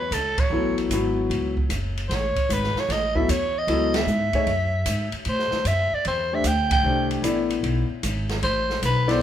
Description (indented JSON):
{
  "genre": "modal jazz",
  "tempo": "152 BPM",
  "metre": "4/4",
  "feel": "swing 66% on 8ths",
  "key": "unclear",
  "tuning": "A4 = 441 Hz",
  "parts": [
    { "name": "growling soprano saxophone", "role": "melody", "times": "0.0-9.2 s", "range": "A4 to G5", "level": "-24 LUFS", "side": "right 1 dB", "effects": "none" },
    { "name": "upright bass", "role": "bass", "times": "0.0-9.2 s", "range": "F#1 to A2", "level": "-26 LUFS", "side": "equal", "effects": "none" },
    { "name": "open jazz drum kit", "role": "drums", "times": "0.1-9.1 s", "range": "hi-hat, kick drum, ride cymbal, snare drum", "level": "-28 LUFS", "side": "right 1 dB", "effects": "none" },
    { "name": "warm concert grand piano", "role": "accompaniment", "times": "0.5-9.2 s", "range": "F#3 to D5", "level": "-25 LUFS", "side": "left 4 dB", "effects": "none" }
  ],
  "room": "moderate large studio reverb, RT60 1.2 s",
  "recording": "band playing live in one room",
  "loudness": "-21 LUFS",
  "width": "side -10 dB against mid",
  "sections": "0.0-9.2 A section",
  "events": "band accent 0.3, 3.9, 6.6",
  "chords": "0.0 F#m9; 5.3 Am9",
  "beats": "0.12 | 0.52 0.92 1.31 1.71 | 2.10 2.50 2.89 3.29 | 3.68 4.08 4.47 4.87 | 5.26 5.66 6.05 6.45 | 6.84 7.24 7.63 8.03 | 8.43 8.82 9.22"
}